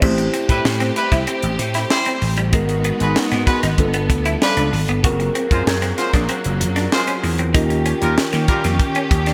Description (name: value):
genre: polished 1980s jazz-funk pop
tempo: 96 BPM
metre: 4/4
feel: straight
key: unclear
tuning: A4 = 440 Hz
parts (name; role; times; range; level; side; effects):
- mellow tine electric piano; accompaniment; 0.0-9.3 s; Bb3 to C5; -26 LUFS; equal; lush chorus
- warm studio string section; sustained chords; 0.0-9.3 s; D#3 to A4; -28 LUFS; equal; none
- clean electric guitar; riff; 0.0-9.3 s; G3 to F#4; -28 LUFS; equal; lush chorus
- vintage slap bass; bass; 0.0-9.3 s; F#1 to D#3; -23 LUFS; equal; none
- tight funk drum kit; drums; 0.0-9.3 s; crash cymbal, hi-hat, kick drum, snare drum; -23 LUFS; equal; none
- warm horn section; second line; 0.5-8.6 s; F3 to C5; -26 LUFS; equal; digital delay
room: moderate lush hall reverb, RT60 2.0 s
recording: bright 1980s-style digital production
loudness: -18 LUFS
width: mono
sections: 0.0-9.3 A section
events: none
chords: 0.0 Am7; 2.5 G#m7; 3.8 G9; 5.0 F#maj9#11; 7.5 D#9